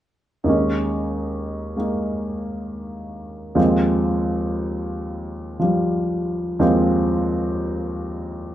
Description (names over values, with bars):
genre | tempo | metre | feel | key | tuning
solo jazz | 79 BPM | 4/4 | swing 68% on 8ths, rubato | Ab major | A4 = 439 Hz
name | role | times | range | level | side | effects
warm baby grand piano | solo | 0.4-8.5 s | Eb2 to Eb4 | -20 LUFS | equal | none
room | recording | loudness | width
moderate studio reverb, RT60 0.9 s | none | -20 LUFS | side -12 dB against mid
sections
0.5-8.5 A section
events
none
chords
0.5 Eb7sus4; 3.6 Ab6/Eb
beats
| 0.48 1.26 2.04 2.81 | 3.58 4.34 5.11 5.86 | 6.61 7.36 8.10